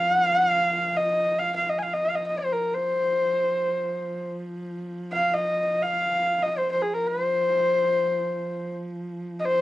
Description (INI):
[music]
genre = mongolian traditional, Mongolian folk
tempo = free time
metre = none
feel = none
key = unclear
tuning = A4 = 440 Hz
[part]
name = clear horsehead fiddle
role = melody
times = 0.0-9.6 s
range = Ab4 to Ab5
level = -22 LUFS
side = left 1 dB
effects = cassette tape
[part]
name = warm horsehead fiddle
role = drone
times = 0.0-9.6 s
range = F3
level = -35 LUFS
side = right 1 dB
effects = none
[sound]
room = moderate small room ambience, RT60 0.5 s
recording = home recording on cassette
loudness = -22 LUFS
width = side -16 dB against mid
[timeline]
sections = 0.0-9.6 A section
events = none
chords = none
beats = free time